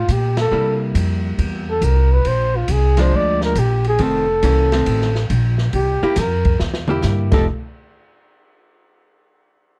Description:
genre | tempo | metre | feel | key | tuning
jazz, small-group swing and bop | 138 BPM | 4/4 | swing 66% on 8ths | unclear | A4 = 441 Hz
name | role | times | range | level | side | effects
breathy flugelhorn | melody | 0.0-7.5 s | F4 to D5 | -22 LUFS | equal | none
upright bass | bass | 0.0-7.5 s | F1 to C3 | -20 LUFS | equal | none
open jazz drum kit | drums | 0.1-7.4 s | crash cymbal, hi-hat, kick drum, ride cymbal, snare drum, toms | -27 LUFS | equal | none
archtop guitar, miked and amplified | accompaniment | 0.5-7.5 s | Eb3 to G4 | -25 LUFS | equal | none
room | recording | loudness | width
light reverb | dark, warm production | -18 LUFS | mono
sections
0.0-7.5 A section; 7.5-9.2 B section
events
band accent 0.3; drum fill 6.6-7.0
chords
0.0 F; 0.5 C7; 2.3 Bb7; 4.0 F7; 5.7 C7; 7.3 F9; 7.5 N.C.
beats
0.09 | 0.52 0.95 1.39 1.82 | 2.26 2.69 3.12 3.56 | 3.99 4.43 4.86 5.30 | 5.73 6.17 6.60 7.04

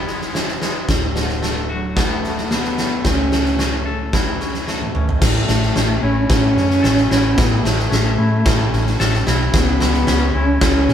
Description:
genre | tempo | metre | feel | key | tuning
post-rock | 111 BPM | 4/4 | straight | unclear | A4 = 440 Hz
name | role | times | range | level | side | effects
muted cello | melody | 0.0-10.9 s | F#3 to C#4 | -20 LUFS | equal | none
twangy electric guitar | arpeggios | 0.0-10.9 s | D2 to A4 | -26 LUFS | left 2 dB | tremolo
hollow-body short-scale fingered electric bass | bass | 0.0-10.9 s | D1 to B2 | -21 LUFS | equal | none
huge arena drum kit | drums | 0.1-10.9 s | crash cymbal, kick drum, snare drum, toms | -18 LUFS | equal | none
room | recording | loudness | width
moderate small room reverb, RT60 0.5 s | band playing live in one room | -15 LUFS | side -9 dB against mid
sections
0.0-5.2 A section; 5.2-10.9 B section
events
drum fill 4.7-5.2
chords
0.0 E; 0.9 D6; 3.0 A/C#; 5.2 A; 9.5 C#m7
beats
0.34 | 0.89 1.43 1.97 2.51 | 3.05 3.59 4.13 4.67 | 5.21 5.76 6.30 6.84 | 7.38 7.92 8.46 9.00 | 9.54 10.08 10.62

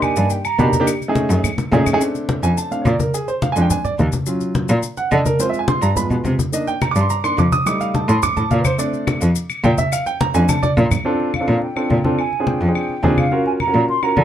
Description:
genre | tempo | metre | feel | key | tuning
Afro-Cuban jazz | 212 BPM | 4/4 | straight | Bb major | A4 = 440 Hz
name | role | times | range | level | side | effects
mellow hollow concert flute | melody | 0.0-0.9, 11.3-14.2 s | F5 to C6 | -22 LUFS | right 3 dB | none
warm baby grand piano | accompaniment | 0.0-14.2 s | Eb3 to Eb6 | -20 LUFS | right 2 dB | none
claves | percussion | 0.0-2.0, 6.8-14.2 s | none | -29 LUFS | left 5 dB | none
congas | percussion | 0.0-14.2 s | none | -21 LUFS | left 1 dB | none
maracas | percussion | 0.0-11.1 s | none | -31 LUFS | left 10 dB | none
clear cello | bass | 0.2-14.2 s | Eb2 to D3 | -18 LUFS | equal | none
room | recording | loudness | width
light reverb | dark, warm production | -16 LUFS | side -10 dB against mid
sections
0.0-2.0 A section; 2.0-11.1 A section; 11.1-14.2 B section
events
flute solo 0.0-2.0; drum fill 1.6-2.0, 10.5-11.1; grand piano solo 2.0-11.1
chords
0.0 Cm9 (rootless); 0.9 B13 (rootless); 2.0 Bbmaj7; 3.1 Bb7 (rootless); 4.3 Ebm9; 5.4 Dm7b5 (rootless); 6.0 G7b9 (rootless); 6.5 Cm9; 7.7 F9; 8.8 Bbmaj7; 12.2 Bb7 (rootless); 13.3 Ebm9 (rootless)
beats
0.03 0.31 0.59 | 0.88 1.16 1.44 1.72 | 2.01 2.29 2.57 2.85 | 3.14 3.42 3.71 3.99 | 4.27 4.55 4.84 5.12 | 5.40 5.68 5.97 6.25 | 6.53 6.82 7.10 7.38 | 7.66 7.95 8.23 8.51 | 8.79 9.08 9.36 9.64 | 9.92 10.21 10.49 10.77 | 11.05 11.34 11.62 11.90 | 12.19 12.47 12.75 13.04 | 13.32 13.60 13.89 14.17

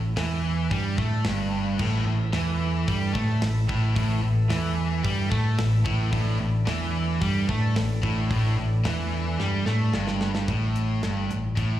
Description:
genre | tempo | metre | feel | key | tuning
hard rock | 111 BPM | 4/4 | straight | unclear | A4 = 440 Hz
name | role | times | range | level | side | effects
overdriven semi-hollow guitar | riff | 0.0-11.8 s | G2 to A3 | -28 LUFS | right 6 dB | spring reverb, slapback echo
scooped high-gain guitar | riff | 0.0-11.8 s | G2 to A3 | -31 LUFS | left 7 dB | distortion
picked electric bass | bass | 0.0-11.8 s | G1 to A2 | -25 LUFS | left 1 dB | none
tight metal drum kit | drums | 0.2-11.7 s | crash cymbal, hi-hat, kick drum, snare drum | -32 LUFS | equal | none
tonewheel organ | sustained chords | 1.8-10.5 s | A3 to B4 | -38 LUFS | equal | slow rotary speaker
room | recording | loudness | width
little or no reverb | live gig heard through the venue's PA, recital hall reverb | -22 LUFS | side -12 dB against mid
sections
0.0-10.5 A section; 10.5-11.8 B section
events
drum fill 9.4-10.5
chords
0.0 A5; 10.5 N.C.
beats
0.17 0.71 1.25 | 1.80 2.34 2.88 3.42 | 3.96 4.50 5.05 5.59 | 6.13 6.67 7.22 7.76 | 8.30 8.85 9.39 9.94 | 10.48 11.03 11.57

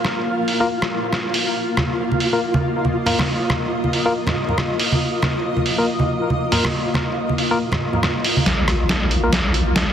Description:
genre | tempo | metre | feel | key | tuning
deep dubstep | 139 BPM | 4/4 | swing 59% on 16ths, half-time | unclear | A4 = 440 Hz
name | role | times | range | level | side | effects
granular cloud pad | sustained chords | 0.0-9.9 s | Bb3 to F5 | -24 LUFS | left 1 dB | built-in reverb
trip hop sampler-style drum kit | drums | 0.0-9.9 s | hi-hat, rim click, snare drum | -22 LUFS | equal | none
flickering grainy texture | texture | 0.0-9.9 s | F4 | -28 LUFS | equal | built-in reverb
barky tine electric piano | stabs | 0.6-9.3 s | Bb3 to Bb4 | -26 LUFS | left 2 dB | overdrive, low-pass filter, dub echo
congas | percussion | 1.8-8.4 s | none | -23 LUFS | right 2 dB | none
deep soft wobble bass | bass | 8.5-9.9 s | Bb1 | -20 LUFS | equal | chorus
electronic kick drum | drums | 8.5-9.9 s | none | barely audible | none | none
riser | sound effects | 9.2-9.9 s | none | -34 LUFS | equal | none
room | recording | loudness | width
moderate huge ambient reverb, RT60 5.3 s | dense, heavily limited modern master | -17 LUFS | side -9 dB against mid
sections
0.0-8.5 A section; 8.5-9.9 B section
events
build-up 8.5-9.9; drum fill 8.5-9.9; filter sweep on tine electric piano 8.5-9.9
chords
0.0 Bb5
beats
0.26 0.69 1.12 | 1.56 1.99 2.42 2.85 | 3.28 3.71 4.15 4.58 | 5.01 5.44 5.87 6.30 | 6.74 7.17 7.60 8.03 | 8.46 8.89 9.33 9.76

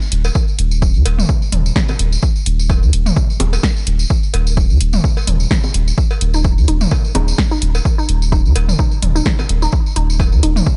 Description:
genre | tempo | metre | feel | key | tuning
minimal techno | 128 BPM | 4/4 | swing 56% on 16ths | unclear | A4 = 435 Hz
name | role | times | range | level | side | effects
tambourine | percussion | 0.0-10.8 s | none | -31 LUFS | equal | none
saturated sub bass | bass | 0.1-10.6 s | Eb1 to Eb2 | -17 LUFS | equal | sidechain pumping
punchy analog drum machine | drums | 0.1-10.5 s | hi-hat, snare drum | -24 LUFS | equal | overdrive, studio reverb
electronic cowbell, toms and bongos | percussion | 0.2-10.6 s | none | -25 LUFS | equal | overdrive, studio reverb
electronic kick drum | drums | 0.4-10.8 s | none | -18 LUFS | equal | overdrive, studio reverb
hollow square pluck | riff | 6.3-10.5 s | Eb4 | -27 LUFS | equal | chorus, sidechain pumping, analog delay
room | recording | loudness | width
digital ambience | dry, gritty hardware recording, nothing above 10.8 kHz | -15 LUFS | mono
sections
0.0-10.8 A section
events
none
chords
none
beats
| 0.35 0.82 1.29 1.76 | 2.23 2.70 3.17 3.63 | 4.10 4.57 5.04 5.51 | 5.98 6.45 6.92 7.38 | 7.85 8.32 8.79 9.26 | 9.73 10.20 10.66

